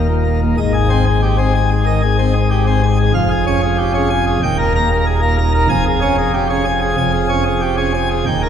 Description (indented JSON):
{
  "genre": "classical, organ toccata",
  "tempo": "94 BPM",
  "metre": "4/4",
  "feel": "straight",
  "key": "Ab major",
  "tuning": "A4 = 439 Hz",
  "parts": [
    { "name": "pipe organ, plenum", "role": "solo", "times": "0.0-8.5 s", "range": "Eb1 to Bb5", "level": "-13 LUFS", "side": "equal", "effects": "none" }
  ],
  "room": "wet church reverb, RT60 3.5 s",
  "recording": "minimal, uncompressed stereo recording",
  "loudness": "-13 LUFS",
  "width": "side -8 dB against mid",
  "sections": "0.6-8.5 A section",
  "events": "none",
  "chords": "0.0 Eb5; 0.6 Ab; 3.1 Db/F; 4.4 Eb; 5.7 Db/F"
}